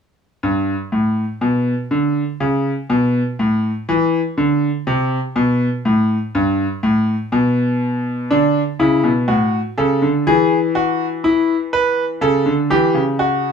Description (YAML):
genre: classical, baroque-style 3-part fugue for grand piano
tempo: 61 BPM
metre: 4/4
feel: straight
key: unclear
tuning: A4 = 438 Hz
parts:
  - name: bright concert grand piano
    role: solo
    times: 0.4-13.5 s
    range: G2 to B4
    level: -15 LUFS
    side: equal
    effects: none
room: light reverb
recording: none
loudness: -15 LUFS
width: side -6 dB against mid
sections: 0.4-13.5 A section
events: none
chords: 0.4 N.C.; 8.3 D; 10.3 E; 12.2 A7/C#